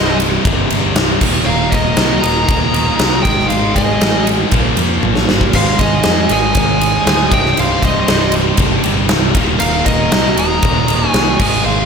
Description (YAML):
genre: hard rock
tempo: 118 BPM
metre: 4/4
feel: straight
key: unclear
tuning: A4 = 439 Hz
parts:
  - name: high-gain lead guitar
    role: melody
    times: 0.0-11.9 s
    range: Eb5 to Bb5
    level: -19 LUFS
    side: equal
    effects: distortion, slapback echo
  - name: octave-fuzz lead guitar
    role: second line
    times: 0.0-11.9 s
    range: Ab4 to Eb5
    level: -24 LUFS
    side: right 3 dB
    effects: distortion, slapback echo
  - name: overdriven tonewheel organ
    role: sustained chords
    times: 0.0-11.9 s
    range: Ab3 to F5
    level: -29 LUFS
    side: left 1 dB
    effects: none
  - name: distorted electric guitar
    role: riff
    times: 0.0-11.9 s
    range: C2 to Bb3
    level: -22 LUFS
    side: equal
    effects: overdrive
  - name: sludgy distorted guitar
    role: riff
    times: 0.0-11.9 s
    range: C2 to Bb3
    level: -22 LUFS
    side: right 10 dB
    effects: overdrive
  - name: tight distorted guitar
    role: riff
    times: 0.0-11.9 s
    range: C2 to Bb3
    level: -21 LUFS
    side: left 12 dB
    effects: distortion, slapback echo
  - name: picked electric bass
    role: bass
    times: 0.0-11.9 s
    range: C1 to F2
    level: -20 LUFS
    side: equal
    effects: none
  - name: huge arena drum kit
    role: drums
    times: 0.2-11.6 s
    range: crash cymbal, kick drum, ride cymbal, snare drum, toms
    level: -15 LUFS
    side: equal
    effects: none
room: moderate lush hall reverb, RT60 2.5 s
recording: big arena sound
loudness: -11 LUFS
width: side -6 dB against mid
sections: 0.0-11.9 A section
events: drum fill 5.0-5.5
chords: 0.0 Cm; 1.2 Eb5; 3.3 Ab5; 4.5 Bb5; 5.5 Ab5; 7.3 Cm; 9.4 Eb5